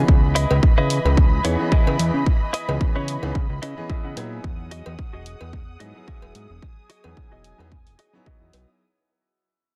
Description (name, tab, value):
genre	nu-disco, nu disco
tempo	110 BPM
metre	4/4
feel	swing 54% on 16ths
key	unclear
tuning	A4 = 443 Hz
part	clear concert grand piano	accompaniment	0.0-8.8 s	E3 to D#5	-33 LUFS	equal	tape echo
part	muted studio string section	sustained chords	0.0-8.8 s	E3 to D#6	-34 LUFS	equal	sidechain pumping
part	fat analog bass	bass	0.0-8.7 s	E1 to C#3	-26 LUFS	equal	none
part	electronic kick drum	drums	0.1-8.4 s	none	-21 LUFS	equal	none
part	direct-recorded clean electric guitar	riff	0.4-8.7 s	E4 to G#5	-31 LUFS	equal	subtle chorus, low-pass filter, tape echo
part	electronic hi-hat	drums	0.4-8.7 s	none	-33 LUFS	equal	none
part	cowbell	percussion	0.5-8.7 s	none	-32 LUFS	equal	none
room	little or no reverb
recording	dense, heavily limited modern master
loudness	-20 LUFS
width	mono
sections	0.0-8.8 A section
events	fade-out 0.0-8.8; filter sweep on clean electric guitar 0.0-8.8; clean electric guitar fill 3.4-4.4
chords	0.1 C#m9; 4.4 Emaj9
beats	| 0.08 0.63 1.17 1.72 | 2.26 2.81 3.35 3.90 | 4.44 4.99 5.54 6.08 | 6.63 7.17 7.72 8.26